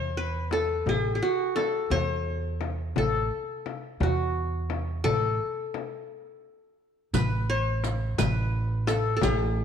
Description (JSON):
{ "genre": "Arabic maqam ensemble", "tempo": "57 BPM (dotted quarters)", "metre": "6/8", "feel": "straight", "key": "A maqam rast", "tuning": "A4 = 440 Hz", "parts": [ { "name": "qanun", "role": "melody", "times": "0.0-9.6 s", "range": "F#4 to C5+50c", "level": "-29 LUFS", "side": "left 2 dB", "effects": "none" }, { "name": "upright bass", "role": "bass", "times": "0.0-9.6 s", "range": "A1 to E2", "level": "-28 LUFS", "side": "right 2 dB", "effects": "none" }, { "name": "frame drum", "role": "percussion", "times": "0.5-9.4 s", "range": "none", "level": "-33 LUFS", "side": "left 7 dB", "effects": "none" }, { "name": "riq", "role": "percussion", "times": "7.1-9.4 s", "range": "none", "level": "-36 LUFS", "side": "right 13 dB", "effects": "none" } ], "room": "light reverb", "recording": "1960s-style stereo with parts hard left and right", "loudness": "-25 LUFS", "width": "side -8 dB against mid", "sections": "0.0-7.1 A section; 7.1-9.6 B section", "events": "break 6.1-7.1", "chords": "none" }